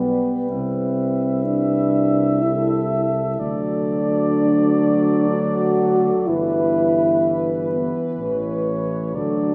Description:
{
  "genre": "classical, hymn-like piece for brass band",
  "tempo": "62 BPM",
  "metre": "3/4",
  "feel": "rubato",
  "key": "D major from 3.4 s",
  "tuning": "A4 = 442 Hz",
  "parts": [
    { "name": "warm flugelhorn", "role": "melody", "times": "0.0-9.5 s", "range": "B4 to E5", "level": "-30 LUFS", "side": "equal", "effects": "none" },
    { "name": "clear French horn section", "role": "second line", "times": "0.0-9.5 s", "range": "A4 to B4", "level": "-30 LUFS", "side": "equal", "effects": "none" },
    { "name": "dark euphonium", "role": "accompaniment", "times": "0.0-9.5 s", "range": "B3 to F#4", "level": "-22 LUFS", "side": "equal", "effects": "none" },
    { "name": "warm trombone", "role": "accompaniment", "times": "0.0-9.5 s", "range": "E3 to G3", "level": "-32 LUFS", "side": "equal", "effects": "none" },
    { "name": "mellow tuba", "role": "bass", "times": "0.0-9.5 s", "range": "G1 to D2", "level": "-27 LUFS", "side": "equal", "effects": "none" }
  ],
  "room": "wet scoring stage reverb, RT60 2.0 s",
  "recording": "heard from further back in the room",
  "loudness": "-20 LUFS",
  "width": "mono",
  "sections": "0.0-9.5 A section",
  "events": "none",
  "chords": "0.0 G/B; 0.5 Cmaj7; 2.4 C6; 3.4 D; 6.3 Em/G; 8.2 A",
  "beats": "| 0.51 1.45 2.43 | 3.40 4.35 5.32 | 6.29 7.27 8.21 | 9.16"
}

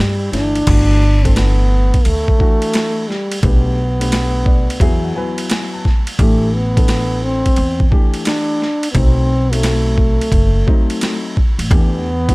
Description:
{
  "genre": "hip hop, jazz-hop",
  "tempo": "87 BPM",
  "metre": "4/4",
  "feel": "swing 66% on 16ths",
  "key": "G major",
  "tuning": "A4 = 444 Hz",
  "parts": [
    { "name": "breathy trombone", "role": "melody", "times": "0.0-12.3 s", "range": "G3 to D4", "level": "-20 LUFS", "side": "equal", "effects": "none" },
    { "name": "upright bass", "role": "bass", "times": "0.0-12.3 s", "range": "F#1 to G2", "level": "-16 LUFS", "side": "equal", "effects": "none" },
    { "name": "boom bap sampler-style drum kit", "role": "drums", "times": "0.0-12.3 s", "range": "crash cymbal, hi-hat, kick drum, ride cymbal, snare drum", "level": "-16 LUFS", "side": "equal", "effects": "overdrive" },
    { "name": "dark baby grand piano", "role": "accompaniment", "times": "0.3-12.3 s", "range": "E3 to A5", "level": "-24 LUFS", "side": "left 2 dB", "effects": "none" }
  ],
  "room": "studio ambience",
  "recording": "none",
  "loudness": "-12 LUFS",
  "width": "side -25 dB against mid",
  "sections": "0.7-12.3 A section",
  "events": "grand piano fill 4.1-6.2",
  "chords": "0.0 Gmaj9; 3.4 Gadd9/B; 4.8 E; 6.2 Am7; 8.9 B7b9; 11.7 Em7",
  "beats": "| 0.67 1.36 2.05 2.74 | 3.43 4.12 4.81 5.50 | 6.19 6.88 7.57 8.26 | 8.95 9.64 10.33 11.02 | 11.71"
}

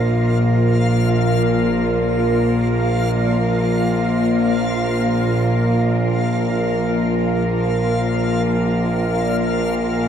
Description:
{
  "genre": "dark ambient drone",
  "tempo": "free time",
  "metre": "none",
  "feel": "none",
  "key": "unclear",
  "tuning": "A4 = 440 Hz",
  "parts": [
    { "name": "muted studio cello section", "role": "sustained chords", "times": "0.0-10.1 s", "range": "F3 to Bb4", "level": "-19 LUFS", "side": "equal", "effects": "none" },
    { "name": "overtone-sweeping drone", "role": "drone", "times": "0.0-10.1 s", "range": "Bb1 to Bb2", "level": "-19 LUFS", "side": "equal", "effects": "chorus, built-in reverb, phaser" },
    { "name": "backwards swelling texture", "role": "texture", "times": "0.0-10.1 s", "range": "F5", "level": "-28 LUFS", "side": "left 2 dB", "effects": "built-in reverb" }
  ],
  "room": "wet cathedral reverb, RT60 5.3 s",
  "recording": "dark, warm production",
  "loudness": "-16 LUFS",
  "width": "side -8 dB against mid",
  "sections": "0.0-10.1 A section",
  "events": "fade-out on synth texture 0.0-10.1; filter sweep on synth drone 0.0-10.1",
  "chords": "0.0 Bb5",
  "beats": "free time"
}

